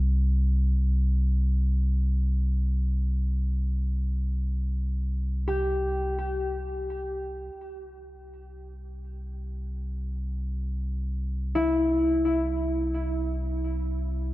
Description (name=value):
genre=ambient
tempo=free time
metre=none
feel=none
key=C major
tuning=A4 = 436 Hz
part: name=warm sub bass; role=bass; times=0.0-14.3 s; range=C2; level=-26 LUFS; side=equal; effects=tube saturation
part: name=concert harp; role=arpeggios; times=5.5-14.2 s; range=E4 to G4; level=-27 LUFS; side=left 1 dB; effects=ping-pong delay
room=moderate cathedral reverb, RT60 6.8 s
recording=worn, warbling old tape, cassette tape, warbly pitch drift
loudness=-25 LUFS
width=side -17 dB against mid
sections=0.0-14.3 A section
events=fade-in on harp 0.0-14.3; fade-out on sub bass 0.0-14.3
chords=0.0 C5; 7.6 C